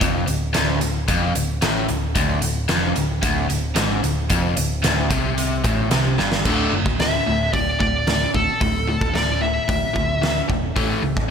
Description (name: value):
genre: classic rock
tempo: 112 BPM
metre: 4/4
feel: straight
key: unclear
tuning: A4 = 438 Hz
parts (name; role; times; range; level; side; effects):
- overdriven electric guitar; riff; 0.0-11.3 s; D2 to A3; -23 LUFS; left 1 dB; none
- picked electric bass; bass; 0.0-11.3 s; D1 to D2; -25 LUFS; equal; none
- big rock drum kit; drums; 0.0-11.3 s; crash cymbal, hi-hat, kick drum, snare drum; -22 LUFS; right 1 dB; none
- smooth overdriven lead guitar; melody; 7.0-10.5 s; A4 to E5; -22 LUFS; left 1 dB; none
room: light reverb, studio ambience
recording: none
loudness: -18 LUFS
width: side -7 dB against mid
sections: 0.0-6.5 A section; 6.5-11.3 B section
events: drum fill 6.2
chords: 0.0 D5; 10.8 A